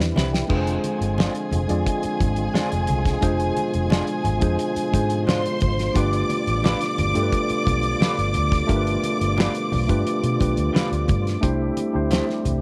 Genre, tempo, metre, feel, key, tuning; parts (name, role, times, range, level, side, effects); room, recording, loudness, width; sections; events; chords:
lush 1970s-style soul; 88 BPM; 4/4; straight; A4 = 442 Hz
tine electric piano; accompaniment; 0.0-12.6 s; Ab3 to G5; -27 LUFS; equal
percussive tonewheel organ; sustained chords; 0.0-12.6 s; B2 to G4; -34 LUFS; equal; slow rotary speaker, overdrive, chorus vibrato
vintage muted fingered electric bass; bass; 0.0-12.6 s; F1 to B2; -27 LUFS; equal
damped 70s drum kit; drums; 0.0-12.6 s; crash cymbal, hi-hat, kick drum, snare drum; -26 LUFS; equal
electric guitar through a small old amp; riff; 0.2-12.2 s; G3 to C5; -35 LUFS; equal
congas; percussion; 0.2-12.6 s; -34 LUFS; equal
warm symphonic violin section; second line; 0.5-11.4 s; Ab4 to D6; -30 LUFS; equal
moderate spring reverb, RT60 1.7 s, small room ambience; -22 LUFS; mono
0.5-11.4 A section; 11.4-12.6 B section
drum fill 0.0-0.5
0.0 Cmaj7; 0.5 Fm6; 6.0 G7; 11.4 C6